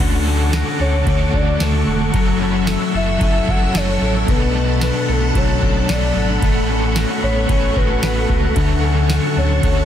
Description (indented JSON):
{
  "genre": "dream pop",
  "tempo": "112 BPM",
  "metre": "4/4",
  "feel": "straight",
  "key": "unclear",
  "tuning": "A4 = 439 Hz",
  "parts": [
    { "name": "cranked stack guitar", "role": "accompaniment", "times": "0.0-9.8 s", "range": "B2 to C#5", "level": "-23 LUFS", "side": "right 2 dB", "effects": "overdrive, tremolo, ensemble chorus" },
    { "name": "soft string machine", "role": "sustained chords", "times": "0.0-9.8 s", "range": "A4 to E6", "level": "-24 LUFS", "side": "right 1 dB", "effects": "ensemble chorus" },
    { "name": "electric guitar at the edge of break-up", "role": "arpeggios", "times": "0.0-9.8 s", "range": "B2 to B4", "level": "-22 LUFS", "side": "left 7 dB", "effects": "wide subtle chorus, tape echo" },
    { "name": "sub bass with octave", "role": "bass", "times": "0.0-9.8 s", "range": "E1 to D2", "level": "-20 LUFS", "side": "equal", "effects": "none" },
    { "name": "booming analog drum machine", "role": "drums", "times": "0.0-9.8 s", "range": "crash cymbal, kick drum, ride cymbal, snare drum, tambourine", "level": "-21 LUFS", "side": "equal", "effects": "none" },
    { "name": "soft octave-layered synth lead", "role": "melody", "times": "0.8-9.8 s", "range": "A4 to F#5", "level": "-25 LUFS", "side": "left 1 dB", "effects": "chorus, tremolo, tape echo" },
    { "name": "vibraphone with medium hard mallets", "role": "texture", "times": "8.6-9.1 s", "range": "E5", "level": "-37 LUFS", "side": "right 7 dB", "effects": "none" }
  ],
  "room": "light reverb",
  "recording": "dense, heavily limited modern master",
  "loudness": "-14 LUFS",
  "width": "side -10 dB against mid",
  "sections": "0.0-9.8 A section",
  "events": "none",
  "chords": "0.0 Dmaj7; 2.1 F#m7; 4.3 Bm7; 6.4 A69; 8.6 Dmaj7"
}